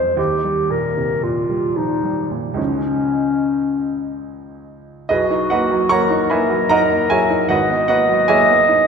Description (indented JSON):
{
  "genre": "classical, impressionist duo for clarinet and grand piano",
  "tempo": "74 BPM",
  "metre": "3/4",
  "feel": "uneven beats, rubato",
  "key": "Db major, B major from 5.1 s",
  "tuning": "A4 = 440 Hz",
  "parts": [
    { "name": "mellow clarinet", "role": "melody", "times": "0.0-8.9 s", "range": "Db4 to D#5", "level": "-18 LUFS", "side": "left 2 dB", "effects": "none" },
    { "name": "clear baby grand piano", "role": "accompaniment", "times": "0.0-8.9 s", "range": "G#1 to C#6", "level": "-18 LUFS", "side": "right 3 dB", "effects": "none" }
  ],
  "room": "wet concert hall reverb, RT60 1.7 s",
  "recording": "none",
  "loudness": "-15 LUFS",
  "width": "side -6 dB against mid",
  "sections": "0.0-5.1 A section; 5.1-8.9 B section",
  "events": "none",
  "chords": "0.2 Ebadd9; 2.6 Dbadd9; 5.1 Bmaj7; 7.5 G#m9"
}